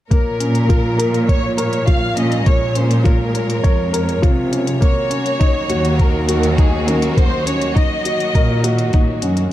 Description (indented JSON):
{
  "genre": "piano and strings electronica",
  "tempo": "102 BPM",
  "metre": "4/4",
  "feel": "straight",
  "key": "Bb minor",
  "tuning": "A4 = 440 Hz",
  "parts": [
    { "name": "warm studio violin section", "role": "melody", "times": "0.1-8.9 s", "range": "Ab4 to F5", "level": "-22 LUFS", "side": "left 1 dB", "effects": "none" },
    { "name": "clear studio string section", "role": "sustained chords", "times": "0.1-9.5 s", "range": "Eb3 to Db5", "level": "-26 LUFS", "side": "right 1 dB", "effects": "none" },
    { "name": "dark upright piano", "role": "riff", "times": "0.1-9.5 s", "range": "Bb3 to Db5", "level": "-22 LUFS", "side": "left 1 dB", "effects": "none" },
    { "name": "warm symphonic cello section", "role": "bass", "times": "0.1-9.4 s", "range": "Eb2 to C3", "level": "-19 LUFS", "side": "right 1 dB", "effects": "sidechain pumping" },
    { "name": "electronic hi-hat", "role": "drums", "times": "0.1-9.5 s", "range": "none", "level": "-28 LUFS", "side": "left 4 dB", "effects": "studio reverb" },
    { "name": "electronic kick drum", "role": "drums", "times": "0.1-9.1 s", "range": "none", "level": "-14 LUFS", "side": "equal", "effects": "studio reverb" }
  ],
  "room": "little or no reverb",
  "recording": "dark, warm production",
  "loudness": "-14 LUFS",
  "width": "side -13 dB against mid",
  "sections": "0.1-9.5 A section",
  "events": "none",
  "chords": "0.1 Bbm; 4.8 Ebm7"
}